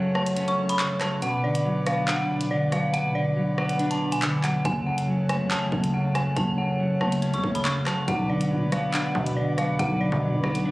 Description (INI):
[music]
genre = hip hop, drill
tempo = 140 BPM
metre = 4/4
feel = half-time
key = unclear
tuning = A4 = 441 Hz
[part]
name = dark detuned synth bell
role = melody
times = 0.0-10.7 s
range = D5 to C#6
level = -28 LUFS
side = equal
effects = chorus, tremolo
[part]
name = semi-hollow electric guitar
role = accompaniment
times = 0.0-10.7 s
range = F#2 to D4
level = -26 LUFS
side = equal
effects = none
[part]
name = pedal harmonium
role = sustained chords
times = 0.0-10.7 s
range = F#3 to F#5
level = -34 LUFS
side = equal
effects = none
[part]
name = drill drum kit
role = drums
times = 0.2-10.6 s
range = handclaps, hi-hat, kick drum, rim click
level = -30 LUFS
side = equal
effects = none
[part]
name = growling 808-style bass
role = bass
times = 4.7-10.6 s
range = F#1 to B2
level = -28 LUFS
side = equal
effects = none
[sound]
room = light reverb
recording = recorded on a phone in the room, club reverb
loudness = -22 LUFS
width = side -19 dB against mid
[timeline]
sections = 0.0-10.7 A section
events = break 0.0-4.7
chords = 0.0 F#m; 1.2 Bm; 4.7 F#m; 8.1 Bm